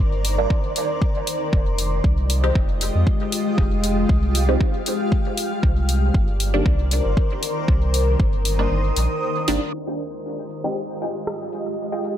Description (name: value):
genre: dub techno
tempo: 117 BPM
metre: 4/4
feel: swing 54% on 16ths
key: F minor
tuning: A4 = 440 Hz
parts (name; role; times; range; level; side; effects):
- granular cloud pad; sustained chords; 0.0-12.2 s; Eb3 to Eb6; -25 LUFS; left 1 dB; built-in reverb, sidechain pumping
- filtered dub chord stab; stabs; 0.0-12.2 s; Eb3 to G4; -27 LUFS; right 1 dB; phaser, sidechain pumping, dub echo
- warm sub bass; bass; 0.0-9.6 s; F1 to F2; -21 LUFS; equal; sidechain pumping
- deep house drum kit; drums; 0.2-12.2 s; hi-hat, rim click; -27 LUFS; left 1 dB; none
- electronic kick drum; drums; 0.5-8.3 s; none; -20 LUFS; equal; none
- filtered dub chord stab; riff; 9.9-12.0 s; F4 to G5; -33 LUFS; equal; phaser, lush chorus, sidechain pumping, dub echo
room: little or no reverb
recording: low-pass filter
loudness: -19 LUFS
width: side -11 dB against mid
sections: 0.0-9.7 A section; 9.7-12.2 B section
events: break 8.7-9.7; filter sweep on synth stab 9.7-12.2; filter sweep 9.7-12.2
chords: 0.0 Cm9; 1.5 Fm9; 5.6 Cm9; 9.7 Fm9